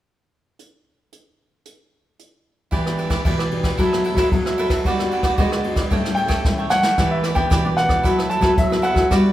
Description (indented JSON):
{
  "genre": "samba and choro",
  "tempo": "113 BPM",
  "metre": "4/4",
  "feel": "straight",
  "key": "E minor",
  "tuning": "A4 = 440 Hz",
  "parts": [
    { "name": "jazz brush drum kit", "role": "drums", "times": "0.6-9.3 s", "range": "hi-hat, kick drum, ride cymbal, rim click, snare drum", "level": "-22 LUFS", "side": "equal", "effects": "none" },
    { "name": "cavaquinho", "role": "accompaniment", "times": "2.7-9.3 s", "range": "E4 to G5", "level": "-25 LUFS", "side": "right 3 dB", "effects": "none" },
    { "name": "nylon-string guitar", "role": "accompaniment", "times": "2.7-9.3 s", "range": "A2 to A4", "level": "-26 LUFS", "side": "left 3 dB", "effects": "none" },
    { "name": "nylon-string guitar", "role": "bass", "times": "2.7-9.3 s", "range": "E3 to A3", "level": "-22 LUFS", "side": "equal", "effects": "none" },
    { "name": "warm baby grand piano", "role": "melody", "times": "6.1-9.3 s", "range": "E5 to A5", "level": "-21 LUFS", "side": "equal", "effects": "none" }
  ],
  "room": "moderate recital hall reverb, RT60 1.5 s",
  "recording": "recorded in a church or concert hall",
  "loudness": "-17 LUFS",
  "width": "side -13 dB against mid",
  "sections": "0.6-2.7 A section; 2.7-7.0 B section; 7.0-9.3 C section",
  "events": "drum fill 6.4-7.0",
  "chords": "0.6 N.C.; 2.7 Em7; 3.8 B7sus4/F#; 4.9 Gmaj7; 5.9 A7; 7.0 Em7; 8.0 B7sus4/F#"
}